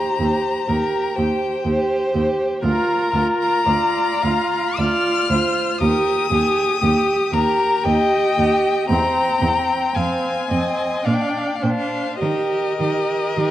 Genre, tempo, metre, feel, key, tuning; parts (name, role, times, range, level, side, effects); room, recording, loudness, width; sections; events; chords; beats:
classical, slow romantic movement for string quartet; 51-62 BPM; 3/4; rubato; Eb major; A4 = 440 Hz
clear violin; melody; 0.0-13.5 s; Eb5 to F6; -22 LUFS; left 5 dB
clear violin; second line; 0.0-13.5 s; G4 to G5; -26 LUFS; left 1 dB
rich viola; accompaniment; 0.0-13.5 s; C4 to G4; -21 LUFS; right 2 dB
rich cello; bass; 0.2-13.5 s; D2 to Eb3; -23 LUFS; right 2 dB
moderate recital hall reverb, RT60 1.8 s; worn, warbling old tape, cassette tape, warbly pitch drift; -17 LUFS; side -12 dB against mid
0.0-13.5 A section
0.0 Eb; 2.6 Bb/D; 5.8 Eb; 8.9 C7(no3); 10.0 Fm; 11.1 Bb; 12.2 Eb
0.70 1.67 | 2.65 3.67 4.79 | 5.82 6.83 7.86 | 8.90 9.95 11.05 | 12.20 13.37